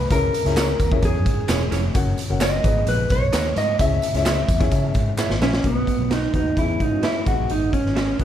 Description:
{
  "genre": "uptempo 1960s-style soul",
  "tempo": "130 BPM",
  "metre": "4/4",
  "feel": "straight",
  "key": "unclear",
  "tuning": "A4 = 440 Hz",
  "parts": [
    { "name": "mellow electric guitar", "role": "melody", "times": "0.0-8.2 s", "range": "B3 to E5", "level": "-23 LUFS", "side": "right 1 dB", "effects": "tape echo" },
    { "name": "vintage muted fingered electric bass", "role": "bass", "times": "0.0-8.2 s", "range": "E1 to C#3", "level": "-24 LUFS", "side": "equal", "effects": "none" },
    { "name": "dark upright piano", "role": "accompaniment", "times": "0.1-8.2 s", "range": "G#2 to F#5", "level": "-30 LUFS", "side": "left 7 dB", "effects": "none" },
    { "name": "raw garage drum kit", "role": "drums", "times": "0.1-8.2 s", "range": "hi-hat, kick drum, snare drum", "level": "-22 LUFS", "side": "equal", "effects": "none" },
    { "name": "tambourine and handclaps", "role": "percussion", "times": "0.1-5.5 s", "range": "none", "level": "-34 LUFS", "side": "equal", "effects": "none" },
    { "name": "electric guitar through a small old amp", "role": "stabs", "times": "0.6-8.1 s", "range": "B3 to E5", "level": "-29 LUFS", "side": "right 6 dB", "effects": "none" }
  ],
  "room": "light reverb, small room ambience",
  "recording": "none",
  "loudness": "-18 LUFS",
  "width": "side -10 dB against mid",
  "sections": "0.0-5.6 A section; 5.6-8.2 B section",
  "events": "drum fill 5.2-5.6",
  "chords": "0.1 C#m; 2.0 F#; 2.6 G#m; 3.8 C#m; 5.6 B; 6.6 E6; 7.3 G#m7"
}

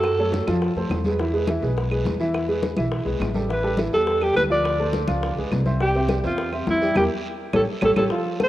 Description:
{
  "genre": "Afro-Cuban jazz",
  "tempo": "208 BPM",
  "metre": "4/4",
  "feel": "straight",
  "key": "unclear",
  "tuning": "A4 = 440 Hz",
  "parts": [
    { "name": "clear alto saxophone", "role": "melody", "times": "0.0-0.3, 3.5-8.5 s", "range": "E4 to D5", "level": "-23 LUFS", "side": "equal", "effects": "cassette tape" },
    { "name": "warm grand piano", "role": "accompaniment", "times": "0.0-8.5 s", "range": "E3 to G5", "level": "-25 LUFS", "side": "right 1 dB", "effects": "cassette tape" },
    { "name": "upright bass", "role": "bass", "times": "0.0-8.1 s", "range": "A1 to F#2", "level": "-26 LUFS", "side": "equal", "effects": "none" },
    { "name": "bongos", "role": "percussion", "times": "0.0-8.5 s", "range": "none", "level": "-31 LUFS", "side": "left 3 dB", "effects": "none" },
    { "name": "claves", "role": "percussion", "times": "0.0-8.5 s", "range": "none", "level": "-38 LUFS", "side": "right 4 dB", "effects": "none" },
    { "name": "congas", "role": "percussion", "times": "0.0-8.5 s", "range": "none", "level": "-30 LUFS", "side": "left 1 dB", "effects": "none" },
    { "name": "guiro", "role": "percussion", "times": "0.0-8.5 s", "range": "none", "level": "-43 LUFS", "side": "right 4 dB", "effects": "none" }
  ],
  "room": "moderate lush hall reverb, RT60 2.9 s",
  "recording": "home recording on cassette",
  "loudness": "-20 LUFS",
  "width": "side -14 dB against mid",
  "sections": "0.0-8.1 A section",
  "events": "drum fill 7.0-8.1; band accent 7.0-8.1",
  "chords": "0.0 F#m; 0.6 F; 1.2 E; 3.5 Asus2; 4.7 Dm7; 5.2 Db7; 5.8 C; 7.0 Edim; 7.5 A7"
}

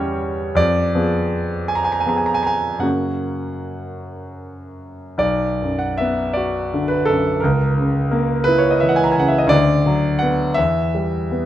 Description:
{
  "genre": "classical, romantic nocturne for solo piano",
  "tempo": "49-59 BPM (dotted quarters)",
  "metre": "12/8",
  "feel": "rubato",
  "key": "B minor",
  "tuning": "A4 = 440 Hz",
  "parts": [
    { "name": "warm grand piano", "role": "solo", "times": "0.0-11.5 s", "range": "B1 to A#5", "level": "-17 LUFS", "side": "equal", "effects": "none" }
  ],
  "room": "moderate recital hall reverb, RT60 1.6 s",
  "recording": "none",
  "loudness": "-16 LUFS",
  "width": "side -12 dB against mid",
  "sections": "0.0-5.2 A section; 5.2-11.5 B section",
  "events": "none",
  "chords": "0.0 C#dim/E; 0.6 Fdim7; 2.8 F#; 5.2 Bm; 7.4 A#dim/C#; 9.5 Bm/D; 10.6 Em"
}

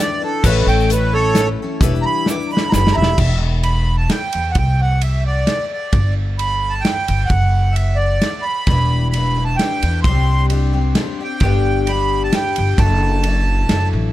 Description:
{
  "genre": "folk rock and heartland rock",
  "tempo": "131 BPM",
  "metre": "3/4",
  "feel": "straight",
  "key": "E dorian, E minor from 3.2 s",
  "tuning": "A4 = 439 Hz",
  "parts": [
    { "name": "accordion", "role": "melody", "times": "0.0-13.9 s", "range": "A4 to D6", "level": "-20 LUFS", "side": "right 3 dB", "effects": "analog delay" },
    { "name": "picked twelve-string acoustic guitar", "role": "accompaniment", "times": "0.0-3.2, 8.7-14.1 s", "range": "G2 to B4", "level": "-22 LUFS", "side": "left 7 dB", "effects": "none" },
    { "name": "upright bass", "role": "bass", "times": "0.4-14.1 s", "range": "E1 to E2", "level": "-17 LUFS", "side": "equal", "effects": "none" },
    { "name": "natural country drum kit", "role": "drums", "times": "0.4-13.8 s", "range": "crash cymbal, hi-hat, kick drum, ride cymbal, snare drum", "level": "-21 LUFS", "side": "equal", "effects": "none" },
    { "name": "tube shaker", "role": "percussion", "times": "0.4-2.8 s", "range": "none", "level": "-33 LUFS", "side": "right 14 dB", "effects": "none" }
  ],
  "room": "little or no reverb",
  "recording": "dark, warm production",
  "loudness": "-14 LUFS",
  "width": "side -14 dB against mid",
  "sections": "0.0-3.2 A section; 3.2-14.1 B section",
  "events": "accordion solo 0.0-3.2; drum fill 2.3-3.2",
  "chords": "0.5 A; 1.8 Em7; 3.2 Em; 4.6 Csus2; 5.9 G; 7.3 D/F#; 8.7 Em7; 10.0 Csus2; 11.4 G; 12.8 Dadd9/F#"
}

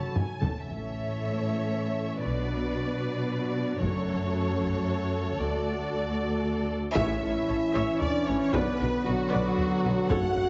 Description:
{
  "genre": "cinematic, epic orchestral film score",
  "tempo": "115 BPM",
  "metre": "3/4",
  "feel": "straight",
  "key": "unclear",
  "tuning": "A4 = 439 Hz",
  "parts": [
    { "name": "warm symphonic violin section", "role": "melody", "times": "0.0-10.5 s", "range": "F#4 to A5", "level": "-38 LUFS", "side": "equal", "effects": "none" },
    { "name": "warm symphonic violin section", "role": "second line", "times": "0.0-10.5 s", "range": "F#4 to F#5", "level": "-40 LUFS", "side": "equal", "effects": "none" },
    { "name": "warm symphonic viola section", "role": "accompaniment", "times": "0.0-10.4 s", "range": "C#4 to E5", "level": "-40 LUFS", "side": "equal", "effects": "none" },
    { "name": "warm French horn section", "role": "sustained chords", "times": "0.0-10.5 s", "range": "E3 to F#4", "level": "-34 LUFS", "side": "equal", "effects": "none" },
    { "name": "taiko ensemble", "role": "drums", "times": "0.2-10.5 s", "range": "none", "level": "-34 LUFS", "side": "equal", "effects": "none" },
    { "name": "rich symphonic double bass section", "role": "bass", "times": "0.4-10.4 s", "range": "F#1 to D2", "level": "-38 LUFS", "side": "equal", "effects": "none" },
    { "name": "warm symphonic cello section", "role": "bass", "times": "0.4-10.5 s", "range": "D2 to B2", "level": "-34 LUFS", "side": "equal", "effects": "none" },
    { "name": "bright trombone section", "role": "sustained chords", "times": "7.0-10.5 s", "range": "C#3 to C#4", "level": "-36 LUFS", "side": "equal", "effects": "none" },
    { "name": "timpani", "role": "percussion", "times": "10.1-10.5 s", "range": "F#2", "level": "-34 LUFS", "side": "equal", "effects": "none" }
  ],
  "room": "moderate scoring stage reverb, RT60 2.1 s",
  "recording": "heavily compressed radio sound, multiband compression, nothing above 7.8 kHz",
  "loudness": "-28 LUFS",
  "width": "mono",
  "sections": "0.7-7.0 A section; 7.0-10.5 B section",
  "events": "drum fill 0.0-0.7; band accent 7.0-7.5",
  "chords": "0.0 F#m; 0.7 A; 2.3 Bm; 3.8 F#m; 5.4 D; 7.0 A; 8.5 Bm"
}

